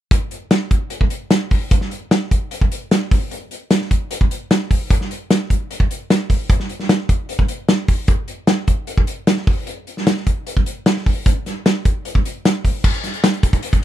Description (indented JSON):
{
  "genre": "rock",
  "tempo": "151 BPM",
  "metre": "4/4",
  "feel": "straight",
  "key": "none",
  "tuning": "none",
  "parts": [
    { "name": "loose indie drum kit", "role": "drums", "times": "0.1-13.8 s", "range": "crash cymbal, hi-hat, kick drum, snare drum", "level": "-16 LUFS", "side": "equal", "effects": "none" }
  ],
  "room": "light reverb",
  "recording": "none",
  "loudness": "-16 LUFS",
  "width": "side -12 dB against mid",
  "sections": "0.1-12.8 A section; 12.8-13.8 B section",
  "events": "none",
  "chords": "none"
}